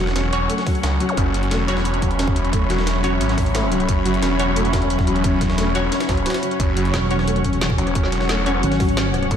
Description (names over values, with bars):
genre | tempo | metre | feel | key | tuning
dark technical drum and bass | 177 BPM | 4/4 | straight | unclear | A4 = 440 Hz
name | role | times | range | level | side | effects
deep dark ambient pad | sustained chords | 0.1-9.4 s | F#3 to F#5 | -25 LUFS | left 2 dB | chorus, built-in reverb, sidechain pumping
felt-muted upright piano | arpeggios | 0.0-9.4 s | F#3 to F#4 | -26 LUFS | left 2 dB | vintage 12-bit sampler grit, sidechain pumping, diffuse ambient delay
snarling distorted saw bass | bass | 0.0-9.4 s | E1 to C#2 | -22 LUFS | equal | distortion, tube saturation
muted studio string section | texture | 0.0-9.4 s | C#4 to B5 | -26 LUFS | equal | sidechain pumping
breakbeat sampler-style drum kit | drums | 0.1-9.4 s | hi-hat, snare drum | -32 LUFS | equal | high-pass filter on hats, high-pass filter on snare
drum and bass drum kit | drums | 0.2-9.4 s | hi-hat, rim click, snare drum | -29 LUFS | equal | none
orchestra-hit-like synth stab | stabs | 0.3-8.5 s | C#4 to C#5 | -29 LUFS | right 1 dB | none
electronic kick drum | drums | 0.7-9.4 s | none | -22 LUFS | equal | none
zap | sound effects | 1.1-1.2 s | none | -30 LUFS | equal | none
pulsing pluck wobble bass | bass | 6.9-9.3 s | E1 to G#1 | -22 LUFS | equal | chorus
room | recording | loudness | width
moderate lush hall reverb, RT60 2.1 s | dreamy mix soaked in reverb | -17 LUFS | side -8 dB against mid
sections
0.0-9.4 A section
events
none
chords
0.0 F#5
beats
0.16 0.50 0.83 | 1.17 1.51 1.85 2.19 | 2.53 2.87 3.21 3.55 | 3.89 4.22 4.56 4.90 | 5.24 5.58 5.92 6.26 | 6.60 6.94 7.28 7.62 | 7.95 8.29 8.63 8.97 | 9.31